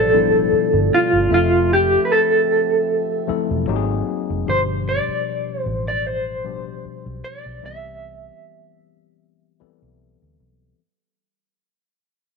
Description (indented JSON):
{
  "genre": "lush 1970s-style soul",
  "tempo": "76 BPM",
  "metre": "4/4",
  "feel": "swing 54% on 16ths",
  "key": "unclear",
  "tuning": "A4 = 439 Hz",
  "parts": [
    { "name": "electric guitar through a small old amp", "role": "melody", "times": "0.0-10.4 s", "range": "F4 to E5", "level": "-18 LUFS", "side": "right 1 dB", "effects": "tremolo" },
    { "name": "tine electric piano", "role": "accompaniment", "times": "0.0-10.8 s", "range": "B2 to E5", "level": "-25 LUFS", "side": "left 13 dB", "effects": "overdrive, fast stereo tremolo" },
    { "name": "dark French horn section", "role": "sustained chords", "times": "0.0-4.5 s", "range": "F3 to E5", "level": "-29 LUFS", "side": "right 13 dB", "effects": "none" },
    { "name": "vintage muted fingered electric bass", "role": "bass", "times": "0.0-10.7 s", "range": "E1 to D2", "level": "-24 LUFS", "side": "right 2 dB", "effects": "none" }
  ],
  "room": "moderate plate reverb, RT60 2.4 s",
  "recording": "1960s-style stereo with parts hard left and right",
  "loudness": "-16 LUFS",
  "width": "side -4 dB against mid",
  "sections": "0.0-10.8 A section",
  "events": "fade-out 0.0-10.8",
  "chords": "0.0 G7; 1.3 Fmaj7; 3.7 G#9; 4.5 G7; 7.6 Cmaj7"
}